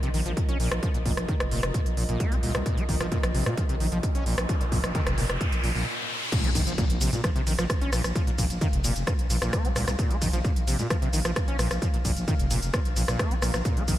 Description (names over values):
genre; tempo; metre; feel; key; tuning
driving peak-time techno; 131 BPM; 4/4; straight; unclear; A4 = 440 Hz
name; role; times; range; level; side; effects
overdriven acid bass; riff; 0.0-13.9 s; Ab2 to Db4; -32 LUFS; equal; analog chorus, cassette tape, sidechain pumping, ping-pong delay
growling FM bass; bass; 0.0-14.0 s; F1 to Bb2; -29 LUFS; equal; sidechain pumping
techno drum kit; drums; 0.0-14.0 s; crash cymbal, hi-hat, ride cymbal, rim click, shaker; -31 LUFS; equal; none
airy breathy pad; texture; 0.0-14.0 s; F4 to F5; -40 LUFS; equal; chorus, sidechain pumping
electronic kick drum; drums; 0.4-14.0 s; none; -26 LUFS; equal; none
riser and impact; sound effects; 3.7-8.2 s; none; -33 LUFS; equal; none
room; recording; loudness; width
light reverb; none; -23 LUFS; side -14 dB against mid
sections
0.0-6.3 A section; 6.3-14.0 B section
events
riser 3.7-6.3; stop 5.9-6.3; drop 6.3-14.0; impact 6.3-8.2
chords
0.0 Bb5